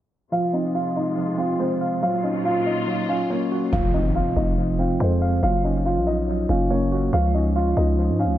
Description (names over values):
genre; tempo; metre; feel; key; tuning
hip hop; 141 BPM; 4/4; half-time; F phrygian; A4 = 440 Hz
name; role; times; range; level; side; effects
dark concert grand piano; melody; 0.3-8.4 s; C4 to F5; -24 LUFS; equal; low-pass filter, dub echo
tine electric piano; accompaniment; 0.3-8.4 s; F3 to F5; -25 LUFS; right 2 dB; medium stereo tremolo, low-pass filter, dub echo
clear studio string section; sustained chords; 0.3-3.7 s; Bb2 to F4; -32 LUFS; left 3 dB; none
growling 808-style bass; bass; 3.7-8.4 s; F1 to Ab2; -22 LUFS; equal; none
impact; sound effects; 3.7-5.4 s; none; -29 LUFS; left 1 dB; none
room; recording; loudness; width
light reverb, small room reverb; echo-heavy mix, low-pass filter; -20 LUFS; side -12 dB against mid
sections
0.3-3.7 A section; 3.7-8.4 B section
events
filter sweep 0.3-3.7; impact 3.7-5.4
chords
0.3 Fm; 2.0 Gbmaj7; 3.7 Fm; 5.4 Gbmaj7; 7.1 Db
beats
| 0.32 0.75 1.17 1.60 | 2.02 2.45 2.88 3.30 | 3.73 4.15 4.58 5.00 | 5.43 5.86 6.28 6.71 | 7.13 7.56 7.98